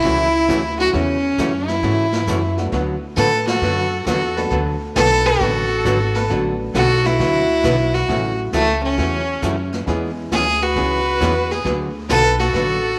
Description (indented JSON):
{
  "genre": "country, western swing",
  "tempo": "134 BPM",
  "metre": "4/4",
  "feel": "swing 67% on 8ths",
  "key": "A major",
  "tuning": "A4 = 441 Hz",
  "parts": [
    { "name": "clear fiddle", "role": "melody", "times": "0.0-13.0 s", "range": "A3 to A4", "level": "-21 LUFS", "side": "equal", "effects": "none" },
    { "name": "rich viola", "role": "second line", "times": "0.0-13.0 s", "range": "A3 to B4", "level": "-27 LUFS", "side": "equal", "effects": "none" },
    { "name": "archtop guitar, miked and amplified", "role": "accompaniment", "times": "0.0-12.8 s", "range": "C#3 to B4", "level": "-26 LUFS", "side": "equal", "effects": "none" },
    { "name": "upright bass", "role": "bass", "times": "0.0-13.0 s", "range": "G#1 to A2", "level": "-26 LUFS", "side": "equal", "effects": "none" },
    { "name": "jazz brush drum kit", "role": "drums", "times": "0.0-13.0 s", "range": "brushed snare drum, hi-hat, kick drum, snare drum", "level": "-30 LUFS", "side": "equal", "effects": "none" },
    { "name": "dark upright piano", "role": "accompaniment", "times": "0.8-10.6 s", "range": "F#3 to G#4", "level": "-32 LUFS", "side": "equal", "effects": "none" }
  ],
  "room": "wet echo chamber reverb, RT60 1.6 s, small room ambience",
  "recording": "none",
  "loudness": "-18 LUFS",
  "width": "mono",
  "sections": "0.0-13.0 A section",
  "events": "none",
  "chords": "0.0 A6; 2.7 D6; 8.1 A6; 9.9 E6; 11.7 D6",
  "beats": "0.04 0.49 | 0.94 1.38 1.83 2.28 | 2.73 3.17 3.62 4.07 | 4.51 4.96 5.41 5.85 | 6.30 6.75 7.19 7.64 | 8.09 8.53 8.98 9.43 | 9.87 10.32 10.76 11.21 | 11.65 12.10 12.54 12.99"
}